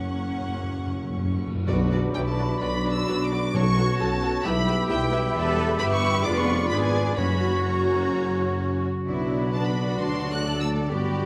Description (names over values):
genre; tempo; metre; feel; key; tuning
classical, dramatic, fast romantic movement for symphony orchestra; 130 BPM; 4/4; rubato; B minor; A4 = 440 Hz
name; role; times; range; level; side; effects
warm symphonic violin section; melody; 0.0-10.7 s; G5 to F#6; -34 LUFS; equal; none
rich symphonic violin section; second line; 0.0-11.3 s; F#4 to F#5; -38 LUFS; equal; none
warm symphonic viola section; accompaniment; 0.0-11.3 s; F#3 to Ab4; -35 LUFS; equal; none
concert harp; arpeggios; 0.0-11.3 s; E2 to D5; -35 LUFS; equal; none
dark tuba; bass; 0.0-11.3 s; E1 to D2; -34 LUFS; equal; none
rich studio double bass section; bass; 0.0-11.3 s; B1 to Ab2; -32 LUFS; equal; none
rich symphonic cello section; bass; 0.0-11.3 s; C#4 to A4; -37 LUFS; equal; none
timpani; percussion; 0.0-4.2, 7.2-7.8 s; F#2 to B2; -32 LUFS; equal; none
hollow flute section; second line; 1.7-11.3 s; A5 to C#6; -38 LUFS; equal; none
warm clarinet; second line; 1.7-11.3 s; F4 to G4; -35 LUFS; equal; none
warm oboe; second line; 1.7-11.3 s; C#5 to E5; -35 LUFS; equal; none
mellow French horn section; sustained chords; 1.7-11.3 s; F#3 to E4; -35 LUFS; equal; none
tam-tam; percussion; 1.7-3.5 s; none; -42 LUFS; equal; none
room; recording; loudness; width
moderate recital hall reverb, RT60 1.4 s; none; -24 LUFS; mono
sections
0.0-1.7 A section; 1.7-11.3 B section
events
timpani fill 0.0-1.7; band accent 1.7-2.2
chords
0.0 F#; 1.7 Bm; 3.5 F#m/B; 4.4 Em/B; 5.4 Em; 6.3 Fdim7; 7.2 F#; 9.1 Bm; 10.0 D